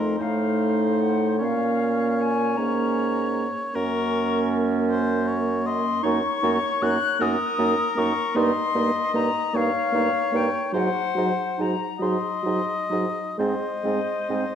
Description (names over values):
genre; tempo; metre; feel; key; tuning
classical, slow romantic movement for wind quintet; 42-53 BPM (dotted quarters); 6/8; rubato; unclear; A4 = 440 Hz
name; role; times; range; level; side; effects
silver concert flute; melody; 0.0-14.6 s; Eb5 to Gb6; -27 LUFS; left 6 dB; none
warm oboe; second line; 0.0-14.6 s; Bb4 to Eb5; -29 LUFS; left 2 dB; none
mellow French horn; accompaniment; 0.0-14.5 s; Gb3 to Bb3; -26 LUFS; equal; none
warm clarinet; accompaniment; 0.0-14.4 s; C4 to Eb4; -30 LUFS; right 8 dB; none
warm bassoon; bass; 0.0-14.5 s; F2 to Bb2; -28 LUFS; right 2 dB; none
room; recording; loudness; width
moderate recital hall reverb, RT60 1.5 s; none; -21 LUFS; side -8 dB against mid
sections
0.0-14.6 A section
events
none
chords
0.0 F7; 1.4 Bbm; 3.8 Gb; 6.0 Ebm7/Gb; 8.4 Eb7/G; 10.7 Ab7; 13.4 Ab